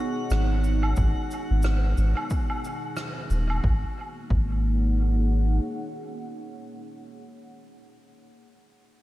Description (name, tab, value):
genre	ambient dub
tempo	90 BPM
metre	4/4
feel	swing 59% on 16ths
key	G# minor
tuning	A4 = 440 Hz
part	deep dark ambient pad	sustained chords	0.0-7.1 s	A#3 to F#5	-33 LUFS	equal	chorus, built-in reverb
part	drifting glass-harmonics texture	texture	0.0-3.7 s	F#4 to F#5	-40 LUFS	left 3 dB	chorus, built-in reverb
part	soft dub sub bass	bass	0.3-5.6 s	D#1 to G#1	-22 LUFS	equal	none
part	cabasa, rim click and woodblock	drums	0.3-3.6 s	none	-35 LUFS	equal	dub echo
part	electronic kick drum	drums	1.0-4.5 s	none	-28 LUFS	equal	overdrive
room	light reverb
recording	none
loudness	-22 LUFS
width	side -16 dB against mid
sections	0.0-3.6 A section; 3.6-6.3 B section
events	none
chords	0.0 G#m7; 3.6 G#5